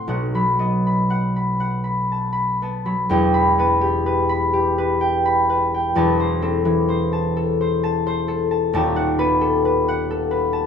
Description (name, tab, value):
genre	classical, solo harp piece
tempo	39-44 BPM (dotted quarters)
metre	6/8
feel	rubato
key	E minor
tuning	A4 = 441 Hz
part	concert harp	solo	0.0-10.7 s	D#1 to C6	-17 LUFS	left 1 dB	none
room	moderate studio reverb, RT60 0.8 s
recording	none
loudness	-17 LUFS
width	side -7 dB against mid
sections	0.0-3.1 A section; 3.1-10.7 B section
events	none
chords	0.1 B; 3.1 Em; 5.9 Am/E; 8.7 B7/D#